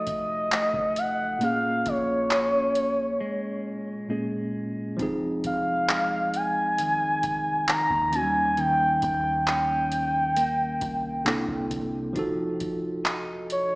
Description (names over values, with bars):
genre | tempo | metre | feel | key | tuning
contemporary R&B | 67 BPM | 4/4 | straight | F minor | A4 = 440 Hz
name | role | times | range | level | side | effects
gliding portamento lead | melody | 0.0-13.8 s | Db5 to Bb5 | -24 LUFS | equal | chorus, tape echo
tine electric piano | accompaniment | 0.0-13.8 s | Bb2 to A4 | -31 LUFS | right 1 dB | medium stereo tremolo
clean electric guitar | arpeggios | 0.0-13.8 s | F2 to Eb4 | -33 LUFS | equal | phaser
soft 808-style bass | bass | 0.0-13.8 s | F1 to Eb2 | -43 LUFS | equal | none
booming analog drum machine | drums | 0.1-13.7 s | handclaps, hi-hat, kick drum | -29 LUFS | equal | none
room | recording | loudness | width
moderate lush hall reverb, RT60 2.2 s | played on a big sound system in a bare room, stone room reverb, small speaker sound | -23 LUFS | side -25 dB against mid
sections
0.0-13.8 A section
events
break 3.2-5.0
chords
0.0 F7b9; 1.4 Bbm7; 5.0 Fm7; 8.1 Eb7; 11.3 C13; 12.2 F7b9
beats
0.52 | 1.41 2.31 3.20 4.10 | 4.99 5.89 6.78 7.68 | 8.57 9.47 10.37 11.26 | 12.16 13.05